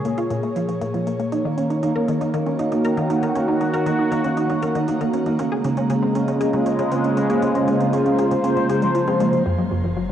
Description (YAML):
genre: ambient, sequencer-driven space music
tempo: 118 BPM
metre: 4/4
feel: straight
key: unclear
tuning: A4 = 440 Hz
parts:
  - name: sweeping resonant pad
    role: sustained chords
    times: 0.0-10.1 s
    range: Bb2 to Db5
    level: -21 LUFS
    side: left 1 dB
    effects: chorus, cassette tape, shimmer reverb
  - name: resonant blip pluck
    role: riff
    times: 0.1-10.1 s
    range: Gb2 to Bb4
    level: -23 LUFS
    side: equal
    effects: chorus, cassette tape, tape echo, shimmer reverb
  - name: electronic hi-hat and congas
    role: percussion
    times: 0.1-9.4 s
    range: none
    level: -43 LUFS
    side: left 1 dB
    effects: cassette tape, tape echo
  - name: concert harp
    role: arpeggios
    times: 1.4-10.1 s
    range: F3 to F4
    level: -25 LUFS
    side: right 6 dB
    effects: auto-pan, cassette tape, tape echo, shimmer reverb
  - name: round analog bass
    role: bass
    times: 9.5-10.1 s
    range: Gb1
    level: -35 LUFS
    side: equal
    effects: none
room: wet spring reverb, RT60 2.4 s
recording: home recording on cassette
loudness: -18 LUFS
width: side -10 dB against mid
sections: 0.0-9.5 A section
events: fade-in on analog synth pad 0.0-9.5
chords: 0.0 Bbm7; 1.3 Ebm7; 5.4 Dbmaj7; 9.5 Gbmaj7